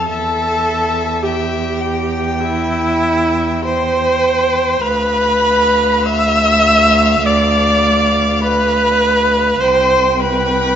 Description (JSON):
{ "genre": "classical, slow romantic movement for string quartet", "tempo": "46-53 BPM", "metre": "4/4", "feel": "rubato", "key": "C major", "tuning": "A4 = 439 Hz", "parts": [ { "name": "rich violin", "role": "melody", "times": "0.0-10.8 s", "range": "E5 to E6", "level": "-21 LUFS", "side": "left 7 dB", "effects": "none" }, { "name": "rich violin", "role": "second line", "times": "0.0-10.8 s", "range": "E5 to G5", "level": "-25 LUFS", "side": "left 4 dB", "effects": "none" }, { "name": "clear viola", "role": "accompaniment", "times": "0.0-10.8 s", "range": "E4 to E5", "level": "-14 LUFS", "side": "right 1 dB", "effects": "none" }, { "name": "rich cello", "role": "bass", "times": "0.0-10.8 s", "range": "C2 to E2", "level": "-19 LUFS", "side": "right 2 dB", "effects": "none" } ], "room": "moderate recital hall reverb, RT60 1.4 s", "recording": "nothing above 7.7 kHz", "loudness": "-12 LUFS", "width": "side -9 dB against mid", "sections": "0.0-10.8 A section", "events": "none", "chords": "0.1 C/E; 4.8 Bdim/D; 9.6 C5", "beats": "| 0.08 1.23 2.40 3.65 | 4.81 6.06 7.26 8.43 | 9.61" }